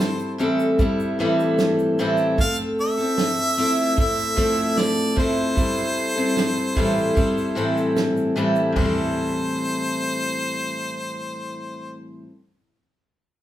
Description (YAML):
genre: acoustic pop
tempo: 75 BPM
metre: 4/4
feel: straight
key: A minor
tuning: A4 = 440 Hz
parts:
  - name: bright harmonica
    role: melody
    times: 0.0-11.9 s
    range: C5 to F5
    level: -25 LUFS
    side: equal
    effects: none
  - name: picked steel-string acoustic guitar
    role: accompaniment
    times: 0.0-12.4 s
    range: A2 to A4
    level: -21 LUFS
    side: equal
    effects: none
  - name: natural country drum kit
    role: drums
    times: 0.0-9.0 s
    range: crash cymbal, kick drum, shaker, snare drum, toms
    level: -25 LUFS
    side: right 1 dB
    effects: none
room: wet large studio reverb, RT60 0.9 s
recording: band playing live in one room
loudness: -19 LUFS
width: side -12 dB against mid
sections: 0.0-8.8 A section; 8.8-12.0 B section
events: none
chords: 0.0 Am7; 2.4 Fmaj7; 5.6 Am7